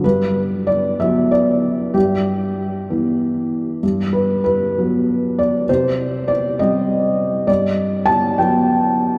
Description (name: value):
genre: neoclassical minimalist piano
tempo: 62-67 BPM (dotted quarters)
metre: 6/8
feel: rubato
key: G major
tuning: A4 = 435 Hz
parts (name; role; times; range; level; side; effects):
- felt-muted upright piano; solo; 0.0-9.2 s; G2 to A5; -18 LUFS; equal; none
room: wet cathedral reverb, RT60 4.8 s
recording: in a vast, echoing space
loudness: -18 LUFS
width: mono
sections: 0.0-9.2 A section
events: none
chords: 0.0 Gmaj7; 1.9 Em/G; 3.8 Gmaj7; 5.7 Cm; 7.5 Gmaj7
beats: | 0.03 0.98 | 1.94 2.88 | 3.82 4.76 | 5.68 6.58 | 7.48 8.38